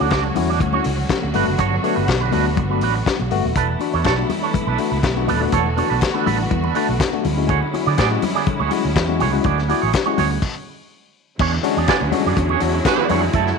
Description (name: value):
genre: disco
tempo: 122 BPM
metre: 4/4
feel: straight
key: unclear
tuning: A4 = 440 Hz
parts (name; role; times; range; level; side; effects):
- barky tine electric piano; accompaniment; 0.0-13.5 s; G2 to F#4; -23 LUFS; left 9 dB; overdrive
- electric guitar with an envelope filter; accompaniment; 0.0-13.5 s; A3 to D5; -22 LUFS; right 13 dB; tremolo
- clear studio string section; sustained chords; 0.0-13.6 s; C#3 to F#4; -26 LUFS; right 1 dB; none
- fingered electric bass; bass; 0.0-13.5 s; D#1 to D3; -22 LUFS; right 2 dB; none
- warm soul drum kit; drums; 0.1-13.5 s; crash cymbal, hi-hat, kick drum, snare drum; -23 LUFS; left 3 dB; none
- congas; percussion; 0.1-13.2 s; none; -29 LUFS; left 10 dB; none
- group handclap; percussion; 4.0-13.0 s; none; -39 LUFS; left 9 dB; none
- warm horn section; stabs; 11.9-13.1 s; G#3 to B4; -22 LUFS; right 12 dB; slapback echo
room: moderate echo chamber reverb, RT60 1.3 s, studio reverb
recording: 1960s-style stereo with parts hard left and right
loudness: -16 LUFS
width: side -5 dB against mid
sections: 0.0-3.6 A section; 3.6-11.4 B section; 11.4-13.6 C section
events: stop 10.4-11.4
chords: 0.0 Dmaj7; 1.3 Gmaj7; 3.6 E7sus4; 7.2 Dmaj9#11; 11.4 E13